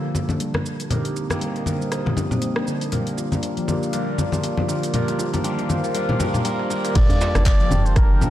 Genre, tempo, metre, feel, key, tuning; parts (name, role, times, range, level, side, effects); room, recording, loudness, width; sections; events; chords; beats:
afro house; 119 BPM; 4/4; swing 57% on 16ths; G minor; A4 = 440 Hz
dark analog pad; sustained chords; 0.0-8.3 s; Eb3 to Eb6; -30 LUFS; left 3 dB; chorus, phaser, sidechain pumping
handpan; arpeggios; 0.0-8.1 s; D3 to F4; -27 LUFS; equal; sidechain pumping, low-pass filter, dub echo
overdriven tine electric piano; stabs; 0.0-8.3 s; Bb3 to A5; -28 LUFS; right 2 dB; phaser, sidechain pumping, dub echo
congas; percussion; 0.1-8.3 s; -25 LUFS; left 2 dB
deep house drum kit; drums; 0.2-8.3 s; crash cymbal, handclaps, hi-hat, rim click, shaker, toms; -30 LUFS; right 1 dB; overdrive, high-pass filter on hats, high-pass filter on toms, high-pass filter on perc, high-pass filter on snare, high-pass filter on cymbals, high-pass filter on room
trumpet with cup mute; melody; 6.5-8.3 s; Bb4 to D5; -28 LUFS; left 1 dB; dub echo
woody FM bass; bass; 7.0-8.3 s; F1 to G1; -21 LUFS; equal; sidechain pumping
electronic kick drum; drums; 7.0-8.1 s; -17 LUFS; equal; overdrive
djembe; percussion; 7.1-8.3 s; -25 LUFS; right 1 dB
moderate lush hall reverb, RT60 2.2 s; dark, warm production; -19 LUFS; side -13 dB against mid
0.0-7.0 A section; 7.0-8.3 B section
build-up 0.0-7.0; drum fill 0.0-7.0; filter sweep on handpan 0.0-7.0; drop 7.0-8.3
0.0 Gm9; 0.9 Cm7; 2.9 Bb6; 4.9 F7sus4; 7.0 Gm9
0.40 | 0.91 1.41 1.92 2.42 | 2.92 3.43 3.93 4.44 | 4.94 5.45 5.95 6.45 | 6.96 7.46 7.97